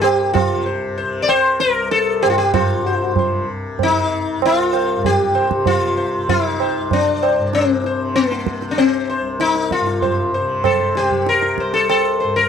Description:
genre	indian classical, Hindustani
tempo	96 BPM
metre	4/4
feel	straight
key	C raga bhimpalasi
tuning	A4 = 440 Hz
part	sitar	melody	0.0-12.5 s	Bb3 to D5	-16 LUFS	left 3 dB	none
part	tanpura	drone	0.0-12.5 s	C2 to C3	-26 LUFS	left 2 dB	stereo widening
part	tabla	percussion	0.0-12.1 s	none	-21 LUFS	right 9 dB	none
room	little or no reverb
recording	dry, close 1970s-style studio recording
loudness	-15 LUFS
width	side -7 dB against mid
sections	0.0-2.5 A section; 2.5-12.5 A section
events	none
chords	none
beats	| 0.04 0.66 1.29 1.92 | 2.54 3.17 3.79 4.42 | 5.04 5.67 6.29 6.92 | 7.54 8.16 8.78 9.41 | 10.03 10.65 11.27 11.89

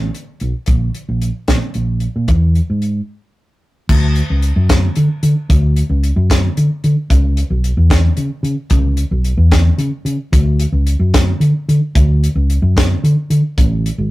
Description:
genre	math rock and midwest emo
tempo	74 BPM (dotted quarters)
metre	6/8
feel	straight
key	unclear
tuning	A4 = 440 Hz
part	hollow-body short-scale fingered electric bass	bass	0.0-14.1 s	G#1 to D3	-13 LUFS	equal	none
part	crisp fusion drum kit	drums	0.1-14.0 s	crash cymbal, hi-hat, kick drum, snare drum	-16 LUFS	equal	none
room	moderate studio reverb, RT60 0.5 s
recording	rough rehearsal-room recording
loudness	-12 LUFS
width	side -18 dB against mid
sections	0.0-3.9 A section; 3.9-14.1 B section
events	break 3.1-3.9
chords	none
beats	| 0.68 1.48 | 2.29 3.09 | 3.89 4.70 | 5.50 6.30 | 7.11 7.92 | 8.72 9.53 | 10.34 11.15 | 11.96 12.77 | 13.58

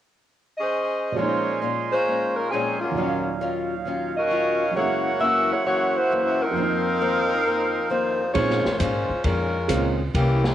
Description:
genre	jazz, big band swing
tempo	134 BPM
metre	4/4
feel	swing 68% on 8ths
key	Bb minor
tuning	A4 = 440 Hz
part	warm saxophone section	melody	0.6-10.5 s	E3 to Fb5	-23 LUFS	left 1 dB	cassette tape
part	warm baby grand piano	accompaniment	1.1-10.0 s	Eb2 to F5	-30 LUFS	right 7 dB	cassette tape
part	picked old ladder-braced acoustic guitar	accompaniment	1.2-10.5 s	F2 to F4	-30 LUFS	left 6 dB	cassette tape
part	clear trumpet section	stabs	1.2-8.3 s	Db4 to C6	-29 LUFS	right 7 dB	cassette tape
part	open jazz drum kit	drums	8.3-10.5 s	hi-hat, kick drum, ride cymbal, snare drum	-27 LUFS	equal	cassette tape
part	upright bass	bass	8.4-10.5 s	C2 to Bb2	-24 LUFS	equal	none
room	light reverb, small room reverb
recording	home recording on cassette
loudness	-20 LUFS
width	side -11 dB against mid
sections	0.0-1.2 A section; 1.2-8.3 B section; 8.3-10.5 C section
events	none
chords	0.0 Abadd11/Db; 1.2 Bbm11; 3.0 Ebm9; 4.8 Gb7; 6.6 F7sus4; 8.3 Bbm11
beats	0.27 0.72 | 1.17 1.62 2.07 2.52 | 2.97 3.42 3.87 4.31 | 4.76 5.21 5.66 6.11 | 6.56 7.00 7.45 7.90 | 8.35 8.80 9.25 9.69 | 10.14

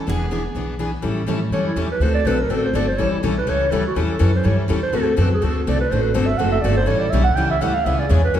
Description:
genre	acoustic string swing (jazz manouche)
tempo	246 BPM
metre	4/4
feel	swing 56% on 8ths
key	A mixolydian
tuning	A4 = 439 Hz
part	picked steel-string acoustic guitar	melody	0.0-0.8 s	G#4	-33 LUFS	equal	none
part	growling clarinet	second line	0.0-8.4 s	B3 to G5	-23 LUFS	right 2 dB	none
part	picked steel-string acoustic guitar	accompaniment	0.1-8.4 s	C#3 to A4	-24 LUFS	left 5 dB	none
part	picked steel-string acoustic guitar	accompaniment	0.1-8.4 s	C#3 to B4	-27 LUFS	right 4 dB	none
part	upright bass	bass	0.1-8.4 s	E1 to A2	-20 LUFS	equal	none
room	wet recital hall reverb, RT60 1.6 s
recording	recorded in a church or concert hall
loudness	-17 LUFS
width	side -10 dB against mid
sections	0.0-1.0 A section; 1.0-8.4 B section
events	clarinet solo 1.0-8.4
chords	0.1 E7; 1.0 A7; 2.0 D7; 3.0 A7; 4.9 D7; 6.9 A7; 7.9 C#m7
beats	| 0.07 0.31 0.56 0.80 | 1.04 1.29 1.53 1.78 | 2.02 2.26 2.51 2.75 | 2.99 3.24 3.48 3.73 | 3.97 4.21 4.46 4.70 | 4.94 5.19 5.43 5.67 | 5.92 6.16 6.40 6.65 | 6.89 7.13 7.38 7.62 | 7.86 8.11 8.35

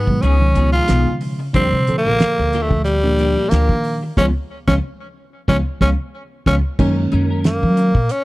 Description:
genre	electric jazz fusion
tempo	91 BPM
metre	4/4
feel	swing 54% on 16ths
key	unclear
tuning	A4 = 439 Hz
part	growling tenor saxophone	melody	0.0-8.2 s	G3 to F4	-19 LUFS	equal	none
part	clean electric guitar	stabs	0.0-8.0 s	F3 to Bb4	-28 LUFS	left 3 dB	ensemble chorus
part	upright bass	bass	0.0-8.1 s	Bb1 to Gb3	-18 LUFS	equal	none
part	bright reed electric piano	accompaniment	0.1-7.9 s	Bb2 to A4	-21 LUFS	right 2 dB	none
part	damped 70s drum kit	drums	0.1-8.2 s	crash cymbal, hi-hat, kick drum, snare drum	-18 LUFS	equal	none
room	small room ambience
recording	dry, close 1970s-style studio recording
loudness	-15 LUFS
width	side -19 dB against mid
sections	0.0-6.8 A section; 6.8-8.2 B section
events	band accent 4.2-6.8; drum fill 5.5-6.8; tenor saxophone solo 6.8-8.2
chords	0.2 Db9; 1.5 Ebmaj9; 4.2 Db7; 6.8 Gb6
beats	0.23 0.89 | 1.55 2.20 2.86 3.52 | 4.17 4.83 5.49 6.14 | 6.80 7.46 8.11

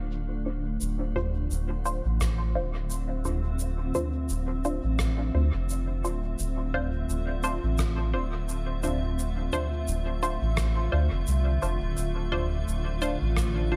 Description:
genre	ambient dub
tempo	86 BPM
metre	4/4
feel	swing 55% on 16ths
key	D minor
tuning	A4 = 440 Hz
part	granular cloud pad	sustained chords	0.0-13.8 s	D3 to F5	-37 LUFS	equal	built-in reverb
part	soft dub sub bass	bass	0.0-13.8 s	D1 to D2	-30 LUFS	equal	none
part	soft-mallet drum kit	drums	0.1-13.5 s	rim click, shaker, toms	-36 LUFS	equal	low-pass filter on toms, low-pass filter on snare, low-pass filter on perc, low-pass filter on room, dub echo
part	filtered dub chord stab	stabs	0.5-13.8 s	D4 to C5	-36 LUFS	equal	phaser, dub echo
part	electronic kick drum	drums	2.2-13.5 s	none	barely audible	none	none
room	small room ambience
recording	none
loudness	-28 LUFS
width	mono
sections	0.8-13.8 A section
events	none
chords	0.0 Dm7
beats	0.12 | 0.81 1.51 2.21 2.91 | 3.60 4.30 5.00 5.70 | 6.39 7.09 7.79 8.49 | 9.19 9.88 10.58 11.28 | 11.98 12.67 13.37

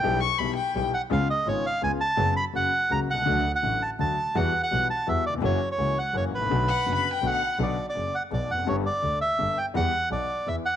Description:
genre	tango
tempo	167 BPM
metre	3/4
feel	rubato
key	B minor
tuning	A4 = 441 Hz
part	bandoneon	melody	0.0-10.8 s	B4 to B5	-26 LUFS	right 2 dB	none
part	warm concert grand piano	accompaniment	0.0-10.6 s	F#1 to G4	-30 LUFS	left 6 dB	none
part	dark double bass	bass	0.0-10.6 s	E#1 to E2	-30 LUFS	right 2 dB	none
part	warm violin	second line	0.2-0.8, 6.7-7.6 s	F#5 to C#6	-28 LUFS	left 8 dB	none
room	moderate echo chamber reverb, RT60 1.9 s, small room reverb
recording	1960s-style stereo, vinyl crackle, nothing above 10.7 kHz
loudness	-23 LUFS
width	side -10 dB against mid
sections	0.0-7.6 A section; 7.6-10.8 B section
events	none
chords	0.0 Em/B; 1.1 C#7; 2.2 F#sus4; 2.5 F#; 3.3 D; 4.4 Emadd9; 5.4 F#7; 6.5 Bm7; 7.6 Bm; 8.7 G; 9.8 Em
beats	| 0.03 0.39 0.75 | 1.11 1.47 1.83 | 2.19 2.54 2.91 | 3.27 3.63 3.99 | 4.36 4.71 5.07 | 5.43 5.79 6.15 | 6.51 6.87 7.23 | 7.59 7.95 8.31 | 8.67 9.03 9.39 | 9.75 10.11 10.47

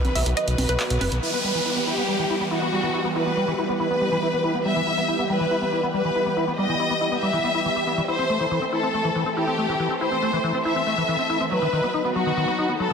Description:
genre	uplifting trance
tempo	140 BPM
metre	4/4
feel	straight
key	E harmonic minor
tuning	A4 = 439 Hz
part	rich studio violin section	second line	0.0-12.9 s	F#4 to E5	-24 LUFS	left 1 dB	digital delay
part	lush unison pad	sustained chords	0.0-12.9 s	D#3 to B4	-28 LUFS	right 1 dB	chorus, phaser
part	fat analog bass	bass	0.0-1.2 s	F#1 to B1	-24 LUFS	equal	none
part	punchy analog drum machine	drums	0.0-1.2 s	congas, handclaps, hi-hat	-30 LUFS	right 1 dB	none
part	wide unison pluck	melody	0.2-1.2 s	B4 to E5	-30 LUFS	right 1 dB	phaser, digital delay
part	liquid acid bass	arpeggios	1.2-12.9 s	D#3 to G4	-26 LUFS	left 1 dB	wide subtle chorus, digital delay
part	downlifter	sound effects	1.2-4.7 s	none	-30 LUFS	right 1 dB	none
room	wet huge ambient reverb, RT60 4.3 s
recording	dense, heavily limited modern master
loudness	-20 LUFS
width	side -6 dB against mid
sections	0.0-1.2 A section; 1.2-12.9 B section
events	band accent 0.8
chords	0.0 B; 1.2 Em; 8.1 Am; 11.5 B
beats	0.37 0.80 | 1.23 1.65 2.08 2.51 | 2.94 3.37 3.80 4.23 | 4.65 5.08 5.51 5.94 | 6.37 6.80 7.23 7.65 | 8.08 8.51 8.94 9.37 | 9.80 10.23 10.65 11.08 | 11.51 11.94 12.37 12.80

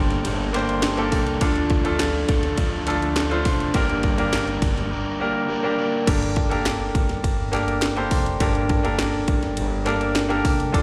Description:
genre	piano-driven pop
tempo	103 BPM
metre	4/4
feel	straight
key	G minor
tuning	A4 = 440 Hz
part	clear concert grand piano	accompaniment	0.0-10.8 s	G2 to D5	-26 LUFS	equal	slapback echo
part	overdriven semi-hollow guitar	riff	0.0-6.6 s	G2 to Bb4	-30 LUFS	equal	slapback echo
part	upright bass	bass	0.0-10.8 s	F1 to D2	-30 LUFS	equal	none
part	house drum kit	drums	0.1-10.8 s	crash cymbal, hi-hat, kick drum, ride cymbal, snare drum	-26 LUFS	equal	none
part	group handclap	percussion	0.6-10.3 s	none	-35 LUFS	equal	none
room	light reverb, small room ambience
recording	live gig heard through the venue's PA, recital hall reverb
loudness	-22 LUFS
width	mono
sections	0.0-6.1 A section; 6.1-10.8 A section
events	none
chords	0.0 Gmadd9; 1.4 Dm; 3.7 Gm; 6.1 Gmadd9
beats	0.25 0.83 | 1.42 2.00 2.58 3.17 | 3.75 4.33 4.91 5.50 | 6.08 6.66 7.25 7.83 | 8.41 8.99 9.57 10.16 | 10.74

